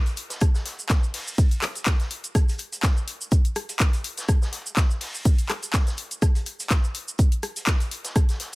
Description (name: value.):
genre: house.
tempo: 124 BPM.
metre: 4/4.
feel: swing 54% on 16ths.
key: none.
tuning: none.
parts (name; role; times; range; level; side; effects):
house drum kit; drums; 0.1-8.6 s; handclaps, hi-hat, rim click, shaker; -29 LUFS; left 1 dB; overdrive, small room ambience.
vintage drum kit; drums; 0.1-8.5 s; hi-hat, shaker, snare drum; -38 LUFS; equal; high-pass filter on hats, small room ambience, high-pass filter on snare, high-pass filter on perc, high-pass filter on room.
electronic kick drum; drums; 0.4-8.3 s; none; -20 LUFS; equal; overdrive, small room ambience.
room: small room ambience.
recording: none.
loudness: -21 LUFS.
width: side -22 dB against mid.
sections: 0.0-8.6 A section.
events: none.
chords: none.